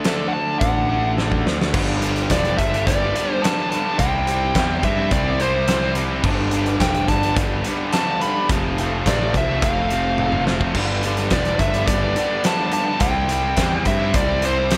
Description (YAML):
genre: classic rock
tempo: 106 BPM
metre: 4/4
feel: straight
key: G mixolydian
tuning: A4 = 443 Hz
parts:
  - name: cranked stack guitar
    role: riff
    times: 0.0-14.8 s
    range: F2 to G4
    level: -30 LUFS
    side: equal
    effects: overdrive
  - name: distorted electric guitar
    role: riff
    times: 0.0-14.8 s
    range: F2 to E4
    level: -29 LUFS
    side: equal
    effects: distortion
  - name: sludgy distorted guitar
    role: riff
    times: 0.0-14.8 s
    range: F2 to D4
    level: -30 LUFS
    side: equal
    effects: overdrive
  - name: big rock drum kit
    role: drums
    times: 0.0-14.8 s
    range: crash cymbal, hi-hat, kick drum, snare drum, toms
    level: -25 LUFS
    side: equal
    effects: none
  - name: dark smooth lead guitar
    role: melody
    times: 0.1-14.8 s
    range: A4 to B5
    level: -25 LUFS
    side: equal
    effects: overdrive, digital delay
  - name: fuzz picked electric bass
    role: bass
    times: 0.6-14.8 s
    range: E1 to G2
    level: -26 LUFS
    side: equal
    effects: overdrive
room: light reverb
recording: none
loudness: -20 LUFS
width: mono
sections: 0.0-1.7 A section; 1.7-14.8 B section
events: drum fill 1.2-1.7, 10.2-10.8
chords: 0.0 D; 1.7 G; 4.0 C; 6.2 G; 8.5 F; 10.8 G; 13.0 C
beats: 0.05 0.61 1.17 | 1.74 2.30 2.86 3.42 | 3.99 4.55 5.11 5.68 | 6.24 6.80 7.37 7.93 | 8.50 9.06 9.63 10.19 | 10.76 11.32 11.88 12.45 | 13.01 13.58 14.14 14.71